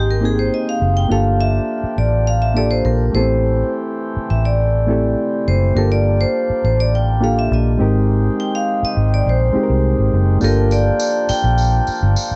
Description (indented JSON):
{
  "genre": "lush 1970s-style soul",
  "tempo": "103 BPM",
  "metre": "4/4",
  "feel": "straight",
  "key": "unclear",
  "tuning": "A4 = 440 Hz",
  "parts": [
    { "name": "vibraphone with hard mallets", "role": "melody", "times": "0.0-11.8 s", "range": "Ab4 to G5", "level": "-23 LUFS", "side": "equal", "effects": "none" },
    { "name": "reed electric piano", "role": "accompaniment", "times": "0.0-12.4 s", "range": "Ab3 to Bb4", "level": "-24 LUFS", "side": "equal", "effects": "overdrive" },
    { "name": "mellow accordion", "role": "sustained chords", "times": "0.0-12.4 s", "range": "Eb3 to G5", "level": "-30 LUFS", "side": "equal", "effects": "none" },
    { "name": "vintage muted fingered electric bass", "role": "bass", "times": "0.0-12.3 s", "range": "F#1 to C2", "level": "-19 LUFS", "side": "equal", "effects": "none" },
    { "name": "tambourine", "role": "percussion", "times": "10.4-12.3 s", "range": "none", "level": "-32 LUFS", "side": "equal", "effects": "none" }
  ],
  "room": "small room ambience",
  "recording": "nothing above 8.0 kHz",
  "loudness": "-17 LUFS",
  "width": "mono",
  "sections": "0.0-10.4 A section; 10.4-12.4 B section",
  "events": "vibraphone solo 0.0-10.4",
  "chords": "0.0 Abmaj7; 1.1 Gm7; 3.1 Am7; 5.8 Gm7; 7.8 Abmaj7; 10.4 Gm7",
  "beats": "0.52 | 1.10 1.69 2.27 2.85 | 3.43 4.02 4.60 5.18 | 5.76 6.35 6.93 7.51 | 8.09 8.68 9.26 9.84 | 10.42 11.00 11.58 12.17"
}